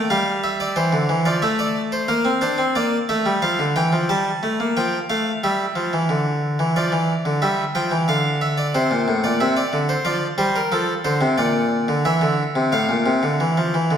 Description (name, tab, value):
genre	classical, baroque-style two-part invention for harpsichord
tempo	90 BPM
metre	4/4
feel	straight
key	F major from 10.1 s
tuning	A4 = 440 Hz
part	harpsichord	solo	0.0-14.0 s	A2 to A5	-18 LUFS	equal	none
room	wet scoring stage reverb, RT60 1.6 s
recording	heard from further back in the room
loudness	-18 LUFS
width	side -8 dB against mid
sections	0.0-4.8 A section; 4.8-14.0 B section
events	none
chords	0.0 F; 0.8 Am; 2.1 Bb; 3.4 F; 6.1 Dmadd9; 8.7 N.C.; 10.1 Dm/F; 11.4 Bb; 12.0 C; 12.7 F/A